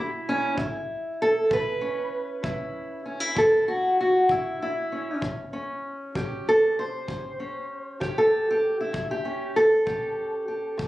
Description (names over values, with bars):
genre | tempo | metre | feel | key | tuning
acoustic country blues, solo or duo | 65 BPM (dotted quarters) | 12/8 | straight | A mixolydian | A4 = 440 Hz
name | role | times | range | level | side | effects
fingerpicked steel-string acoustic guitar | melody | 0.0-10.9 s | A2 to C5 | -23 LUFS | equal | none
kick drum | drums | 0.6-10.9 s | none | -36 LUFS | left 1 dB | none
room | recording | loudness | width
light reverb | recorded on a phone in the room, club reverb, nothing above 11.0 kHz | -23 LUFS | side -16 dB against mid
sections
0.6-10.9 A section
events
steel-string acoustic guitar solo 0.6-10.9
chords
0.0 N.C.; 0.6 A7